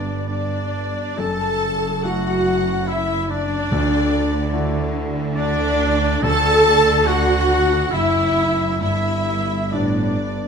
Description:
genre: cinematic.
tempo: 71 BPM.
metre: 3/4.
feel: uneven beats, rubato.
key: D major.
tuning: A4 = 439 Hz.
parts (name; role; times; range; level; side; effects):
warm symphonic violin section; melody; 0.0-10.5 s; D5 to A5; -30 LUFS; left 3 dB; none.
clear clarinet; second line; 0.0-10.5 s; D4 to A4; -27 LUFS; left 1 dB; none.
clear oboe; second line; 0.0-10.5 s; D5 to A5; -28 LUFS; right 1 dB; none.
mellow hollow small flute group; second line; 0.0-10.4 s; D5 to A5; -29 LUFS; left 4 dB; none.
rich chamber violin section; second line; 0.0-10.5 s; D5 to A5; -29 LUFS; left 3 dB; none.
clear grand piano; accompaniment; 0.0-10.5 s; D2 to A4; -29 LUFS; left 4 dB; none.
warm symphonic viola section; accompaniment; 0.0-10.5 s; D4 to A4; -23 LUFS; right 3 dB; none.
dark French horn section; sustained chords; 0.0-10.5 s; D4 to A4; -26 LUFS; left 6 dB; none.
rich symphonic cello section; bass; 0.0-10.5 s; F#2 to D3; -26 LUFS; right 3 dB; none.
rich symphonic double bass section; bass; 0.0-10.5 s; F#1 to D2; -25 LUFS; right 3 dB; none.
timpani; percussion; 3.7-7.5 s; D3; -28 LUFS; equal; none.
room: moderate recital hall reverb, RT60 1.2 s.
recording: close, detailed microphones.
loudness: -17 LUFS.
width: side -6 dB against mid.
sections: 0.0-10.5 A section.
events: none.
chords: 0.0 G; 1.2 F#m7; 3.7 Dadd9; 6.2 D; 8.8 G.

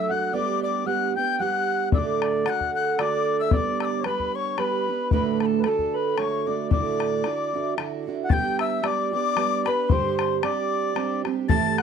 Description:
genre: celtic folk, Celtic waltz.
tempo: 113 BPM.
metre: 3/4.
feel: swing 55% on 8ths.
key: D major, G major from 8.3 s.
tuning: A4 = 440 Hz.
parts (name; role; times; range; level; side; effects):
mellow accordion; melody; 0.0-11.8 s; A4 to A5; -27 LUFS; equal; none.
mellow mid whistle; second line; 0.0-11.8 s; A5 to A6; -29 LUFS; left 15 dB; none.
fingerpicked twelve-string acoustic guitar; accompaniment; 0.0-11.8 s; D2 to G4; -26 LUFS; right 8 dB; none.
bodhran; percussion; 1.9-11.8 s; none; -25 LUFS; left 5 dB; none.
room: small room ambience.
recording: dry, close 1970s-style studio recording.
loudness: -22 LUFS.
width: side -7 dB against mid.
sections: 0.0-8.3 A section; 8.3-11.8 B section.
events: none.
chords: 0.3 G; 1.9 D; 3.5 G; 5.1 D; 6.7 Dadd9; 8.3 G; 9.9 Csus2/G.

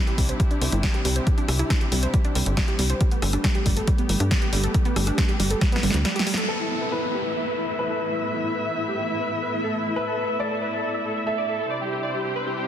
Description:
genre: uplifting trance.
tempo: 138 BPM.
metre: 4/4.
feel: straight.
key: A minor.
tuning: A4 = 437 Hz.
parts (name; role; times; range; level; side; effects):
dark studio string section; sustained chords; 0.0-12.7 s; A2 to E5; -30 LUFS; left 1 dB; sidechain pumping, low-pass filter.
wide unison pluck; arpeggios; 0.0-6.5 s; G3 to C5; -29 LUFS; right 3 dB; sidechain pumping, dub echo.
punchy analog drum machine; drums; 0.1-6.5 s; hi-hat, rim click, snare drum; -27 LUFS; equal; overdrive.
tight sequencer bass; bass; 0.2-6.0 s; G1 to G2; -23 LUFS; equal; sidechain pumping.
electronic kick drum; drums; 0.2-5.7 s; none; -22 LUFS; equal; overdrive.
dense compressed supersaw; melody; 6.5-12.6 s; E4 to E5; -29 LUFS; equal; sidechain pumping, low-pass filter, dub echo.
warm baby grand piano; second line; 6.5-12.7 s; A4 to E5; -30 LUFS; equal; dub echo.
downlifter; sound effects; 6.5-10.0 s; none; -34 LUFS; equal; none.
room: light reverb, digital ambience.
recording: dense, heavily limited modern master.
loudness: -21 LUFS.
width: side -10 dB against mid.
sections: 0.0-6.5 A section; 6.5-12.7 B section.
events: filter sweep on string section 0.0-6.5; drum fill 5.6-6.5; band accent 6.3; filter sweep on supersaw synth 6.5-12.7.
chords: 0.0 Cadd9; 3.0 Gadd9; 6.5 Asus2; 11.7 Cadd9.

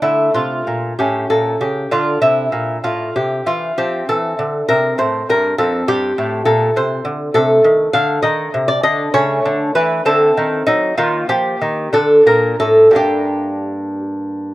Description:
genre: classical, baroque-style dance for lute.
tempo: 56-69 BPM (dotted quarters).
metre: 6/8.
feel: rubato.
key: D minor.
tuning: A4 = 440 Hz.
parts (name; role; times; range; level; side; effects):
lute; solo; 0.0-14.5 s; F2 to F5; -13 LUFS; equal; slapback echo.
room: little or no reverb.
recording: recorded outdoors, with no room sound.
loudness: -13 LUFS.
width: side -16 dB against mid.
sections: 0.0-14.5 A section.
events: none.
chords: 0.0 Dm; 1.0 A; 1.9 D5; 3.8 F; 4.7 C5; 5.6 F; 7.3 Adim/C; 9.1 A/C#; 10.1 D7; 11.0 Eb; 11.9 D5; 13.0 Gm.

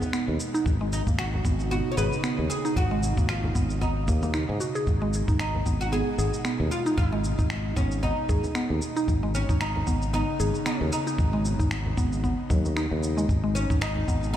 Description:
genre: organic downtempo.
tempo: 114 BPM.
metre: 4/4.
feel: swing 56% on 16ths.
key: unclear.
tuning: A4 = 440 Hz.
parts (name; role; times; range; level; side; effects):
oud; melody; 0.0-14.4 s; B3 to C#5; -32 LUFS; left 1 dB; ping-pong delay.
airy breathy pad; sustained chords; 0.0-14.4 s; B2 to D#4; -34 LUFS; right 2 dB; chorus, sidechain pumping.
electronic cabasa and finger snaps; drums; 0.0-14.4 s; none; -37 LUFS; equal; none.
frame drum; percussion; 0.0-14.1 s; none; -35 LUFS; right 1 dB; none.
mallet-like synth pluck; arpeggios; 0.1-14.4 s; F#3 to G#4; -30 LUFS; right 1 dB; chorus, ping-pong delay.
sustaining fretless electric bass; bass; 0.3-14.4 s; G#1 to G#2; -28 LUFS; equal; sidechain pumping.
electronic kick drum; drums; 0.7-14.2 s; none; -25 LUFS; equal; none.
room: light reverb.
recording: played on a big sound system in a bare room, stone room reverb.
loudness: -23 LUFS.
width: side -11 dB against mid.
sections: 0.0-14.4 A section.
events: none.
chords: 0.0 G#m; 0.7 Badd9/G#; 4.9 G#m; 9.1 Badd9/G#; 13.3 G#m.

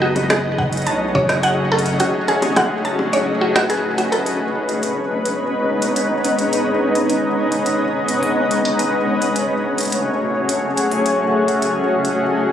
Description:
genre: IDM.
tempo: 106 BPM.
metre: 4/4.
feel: straight.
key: F# dorian.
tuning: A4 = 441 Hz.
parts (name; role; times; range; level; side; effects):
granular cloud pad; sustained chords; 0.0-12.5 s; G#3 to D#5; -18 LUFS; left 1 dB; built-in reverb.
mallet-like synth pluck; arpeggios; 0.0-4.3 s; F#4 to A5; -20 LUFS; right 1 dB; chorus, tape echo.
round analog bass; bass; 0.0-2.0 s; F#1 to B1; -23 LUFS; equal; none.
flickering grainy texture; texture; 0.0-12.2 s; C#4 to D#5; -26 LUFS; equal; built-in reverb.
organic electronic drum kit; drums; 0.2-12.2 s; bongos, hi-hat, snare drum; -24 LUFS; equal; tape echo.
electronic kick drum; drums; 0.6-1.3 s; none; -22 LUFS; equal; none.
room: moderate lush hall reverb, RT60 2.0 s.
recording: recorded on a phone in the room, studio ambience, compression, faint mains hum.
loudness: -16 LUFS.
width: side -9 dB against mid.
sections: 0.0-4.3 A section; 4.3-12.5 B section.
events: none.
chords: 0.0 F#madd9; 4.3 G#m; 8.8 F#madd9.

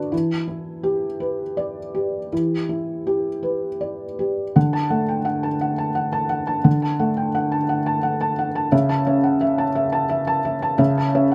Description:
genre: neoclassical minimalist piano.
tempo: 78-88 BPM.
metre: 3/4.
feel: rubato.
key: unclear.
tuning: A4 = 440 Hz.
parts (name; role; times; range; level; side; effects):
felt-muted upright piano; solo; 0.0-11.3 s; C#3 to A5; -22 LUFS; equal; none.
room: light reverb.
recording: none.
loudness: -22 LUFS.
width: mono.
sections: 0.0-4.6 A section; 4.6-11.3 A section.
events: none.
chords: 0.1 Em7; 4.6 D; 8.7 A/C#.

